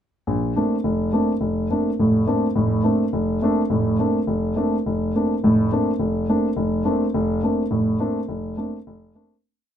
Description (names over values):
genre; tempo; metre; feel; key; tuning
jazz; 210 BPM; 4/4; swing 61% on 8ths; Bb major; A4 = 440 Hz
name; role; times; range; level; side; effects
dark grand piano; solo; 0.3-9.3 s; F1 to D4; -19 LUFS; equal; none
room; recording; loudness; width
light reverb; minimal, uncompressed stereo recording; -19 LUFS; side -9 dB against mid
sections
0.3-9.4 A section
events
fade-out 7.6-9.4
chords
0.3 Bbmaj9